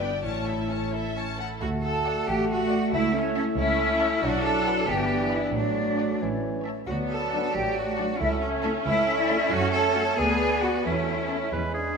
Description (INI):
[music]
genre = quick classical-period movement for symphony orchestra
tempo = 90 BPM (dotted quarters)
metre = 6/8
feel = straight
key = D major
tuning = A4 = 439 Hz
[part]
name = rich studio violin section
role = melody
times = 0.0-11.5 s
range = E5 to A5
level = -40 LUFS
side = left 4 dB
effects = none
[part]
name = rich studio violin section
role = second line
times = 0.0-11.5 s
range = A4 to F#5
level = -37 LUFS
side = left 3 dB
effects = none
[part]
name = clear studio viola section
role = accompaniment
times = 0.0-11.9 s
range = A3 to E4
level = -30 LUFS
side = right 1 dB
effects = none
[part]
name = dark French horn section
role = sustained chords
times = 0.0-12.0 s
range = E3 to D5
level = -33 LUFS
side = left 4 dB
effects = none
[part]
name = rich chamber double bass section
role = bass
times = 0.0-12.0 s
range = G1 to F#2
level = -32 LUFS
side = right 3 dB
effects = none
[part]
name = rich studio cello section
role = bass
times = 0.0-11.5 s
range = A3 to A4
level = -29 LUFS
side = right 1 dB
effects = none
[part]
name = flute section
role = second line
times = 1.6-11.5 s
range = C#5 to A5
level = -30 LUFS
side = left 1 dB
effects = none
[part]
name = warm clarinet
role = second line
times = 1.6-12.0 s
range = B4 to F#5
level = -33 LUFS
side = equal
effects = none
[part]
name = mellow bassoon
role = accompaniment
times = 1.6-12.0 s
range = E3 to B3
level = -33 LUFS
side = right 2 dB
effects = none
[part]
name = clear oboe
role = second line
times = 11.5-12.0 s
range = G#4 to B4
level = -30 LUFS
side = right 1 dB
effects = none
[sound]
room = wet scoring stage reverb, RT60 2.0 s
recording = none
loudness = -23 LUFS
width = side -5 dB against mid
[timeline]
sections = 0.0-1.6 A section; 1.6-12.0 B section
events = none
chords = 0.2 A; 1.6 D; 2.9 A/C#; 4.2 Bm; 4.9 Em7/G; 5.5 D/A; 6.2 A; 6.9 D; 8.2 A/C#; 9.5 F#m; 10.2 Bm/D; 10.8 A/E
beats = | 0.23 0.93 | 1.62 2.27 | 2.93 3.57 | 4.22 4.88 | 5.55 6.22 | 6.89 7.55 | 8.21 8.86 | 9.52 10.18 | 10.85 11.52